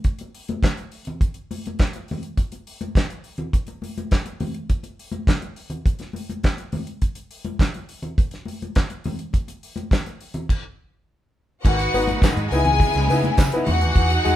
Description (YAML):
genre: disco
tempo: 103 BPM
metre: 4/4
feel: straight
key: C# minor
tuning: A4 = 440 Hz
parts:
  - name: damped 70s drum kit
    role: drums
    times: 0.0-14.4 s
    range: crash cymbal, handclaps, hi-hat, kick drum, snare drum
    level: -20 LUFS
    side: equal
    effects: none
  - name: congas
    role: percussion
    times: 0.2-14.1 s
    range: none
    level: -31 LUFS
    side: left 2 dB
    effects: none
  - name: rich studio string section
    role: second line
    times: 11.6-14.4 s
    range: F#4 to G#5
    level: -22 LUFS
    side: left 2 dB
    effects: none
  - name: clear symphonic string section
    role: sustained chords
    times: 11.6-14.4 s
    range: C#3 to B4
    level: -28 LUFS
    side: right 1 dB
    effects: none
  - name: clear grand piano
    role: accompaniment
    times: 11.7-14.4 s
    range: G#2 to F#4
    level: -24 LUFS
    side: left 2 dB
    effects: none
  - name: vintage muted fingered electric bass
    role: bass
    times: 11.7-14.4 s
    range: G#1 to C#3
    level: -22 LUFS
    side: equal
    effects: none
  - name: tambourine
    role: percussion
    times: 11.9-14.4 s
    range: none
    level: -41 LUFS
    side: right 5 dB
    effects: none
room: moderate studio reverb, RT60 0.7 s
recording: band playing live in one room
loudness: -20 LUFS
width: side -13 dB against mid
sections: 0.0-11.7 A section; 11.7-14.4 B section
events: stop 10.5-11.7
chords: 0.0 N.C.; 11.7 G#m7; 12.5 C#m7; 13.7 Emaj9